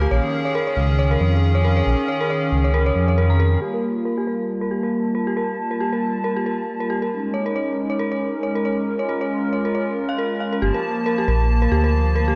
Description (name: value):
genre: IDM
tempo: 137 BPM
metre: 4/4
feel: swing 56% on 16ths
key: unclear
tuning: A4 = 440 Hz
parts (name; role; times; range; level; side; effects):
- hollow soft pad; sustained chords; 0.0-12.4 s; Eb3 to A5; -25 LUFS; equal; chorus, vintage 12-bit sampler grit
- dark detuned synth bell; arpeggios; 0.0-12.4 s; G4 to Bb5; -27 LUFS; equal; chorus, low-pass filter, delay
- dark detuned saw bass; bass; 0.0-3.6, 10.6-12.3 s; G1 to F2; -20 LUFS; equal; none
- pulsing gated texture; texture; 0.0-3.6 s; F5; -39 LUFS; equal; chorus, built-in reverb
room: moderate lush hall reverb, RT60 2.7 s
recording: dark, warm production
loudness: -21 LUFS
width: mono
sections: 0.0-3.6 A section; 3.6-10.6 B section; 10.6-12.4 A section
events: filter sweep on analog synth pad 3.6-10.6; filter sweep on synth bell 3.6-10.6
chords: 0.1 Bbm7; 3.6 Gm9; 7.1 Bbm7; 10.6 Gm9